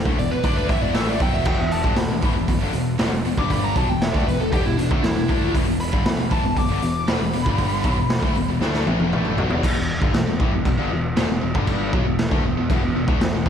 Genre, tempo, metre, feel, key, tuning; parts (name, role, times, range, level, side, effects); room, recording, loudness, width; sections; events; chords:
hard rock; 118 BPM; 4/4; straight; E minor; A4 = 440 Hz
heavy high-gain guitar; riff; 0.0-9.6 s; E2 to D4; -31 LUFS; left 1 dB; distortion, slapback echo
fuzz picked electric bass; bass; 0.0-13.5 s; E1 to D2; -27 LUFS; equal; overdrive
overdriven electric guitar; riff; 0.1-13.5 s; E2 to D4; -26 LUFS; left 11 dB; slapback echo
scooped high-gain guitar; riff; 0.1-13.5 s; E2 to D4; -28 LUFS; right 9 dB; distortion
raw garage drum kit; drums; 0.1-13.5 s; crash cymbal, hi-hat, kick drum, snare drum, toms; -22 LUFS; equal
biting lead guitar; melody; 0.2-8.6 s; D4 to D6; -26 LUFS; equal; overdrive, slapback echo
light reverb, studio reverb; -18 LUFS; side -8 dB against mid
0.0-9.6 A section; 9.6-13.5 B section
lead electric guitar solo 0.0-9.6; drum fill 8.6-9.6
0.0 Em